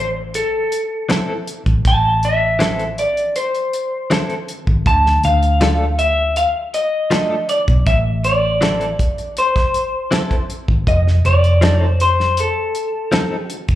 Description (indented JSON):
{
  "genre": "straight-eighth soul blues",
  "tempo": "80 BPM",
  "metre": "4/4",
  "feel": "straight",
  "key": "A minor",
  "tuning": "A4 = 440 Hz",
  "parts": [
    { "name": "electric guitar through a small old amp", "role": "melody", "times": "0.0-13.5 s", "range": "A4 to A5", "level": "-18 LUFS", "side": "left 1 dB", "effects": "slapback echo" },
    { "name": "vintage muted fingered electric bass", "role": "bass", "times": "0.0-13.8 s", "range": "F1 to D2", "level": "-17 LUFS", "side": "equal", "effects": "none" },
    { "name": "damped 70s drum kit", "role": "drums", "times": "0.3-13.8 s", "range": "hi-hat, kick drum, snare drum", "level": "-20 LUFS", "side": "equal", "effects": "none" },
    { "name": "direct-recorded clean electric guitar", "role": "stabs", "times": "1.1-13.4 s", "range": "E3 to A4", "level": "-22 LUFS", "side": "left 2 dB", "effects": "tremolo, slapback echo" }
  ],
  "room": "light reverb",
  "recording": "live gig heard through the venue's PA, club reverb",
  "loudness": "-14 LUFS",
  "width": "side -13 dB against mid",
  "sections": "0.0-13.8 A section",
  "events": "none",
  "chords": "0.0 Am; 4.9 Dm; 7.9 Am; 10.9 F7",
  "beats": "0.35 1.10 | 1.85 2.60 3.35 4.11 | 4.86 5.61 6.36 7.11 | 7.86 8.62 9.37 10.12 | 10.87 11.62 12.37 13.12"
}